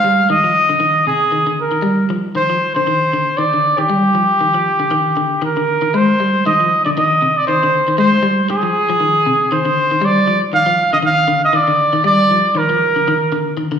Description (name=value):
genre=afrobeat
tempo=118 BPM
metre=4/4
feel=swing 56% on 16ths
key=F dorian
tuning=A4 = 441 Hz
part: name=warm trumpet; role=melody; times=0.0-13.6 s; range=G4 to F5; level=-14 LUFS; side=right 1 dB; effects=plate reverb, slapback echo
part: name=electric guitar at the edge of break-up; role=arpeggios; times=0.0-13.8 s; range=C3 to Ab3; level=-18 LUFS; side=left 2 dB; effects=tremolo, plate reverb, slapback echo
room=moderate club reverb, RT60 0.8 s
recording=live gig heard through the venue's PA, recital hall reverb, small room ambience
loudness=-12 LUFS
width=side -7 dB against mid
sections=0.0-5.9 A section; 5.9-13.8 B section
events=none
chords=0.0 Fm9; 1.8 Ebmaj7; 5.9 Fm9; 10.0 Ebmaj7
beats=0.30 0.82 1.33 | 1.85 2.36 2.87 3.39 | 3.90 4.41 4.92 5.43 | 5.95 6.46 6.97 7.48 | 7.99 8.49 9.00 9.51 | 10.02 10.53 11.04 11.55 | 12.05 12.56 13.07 13.58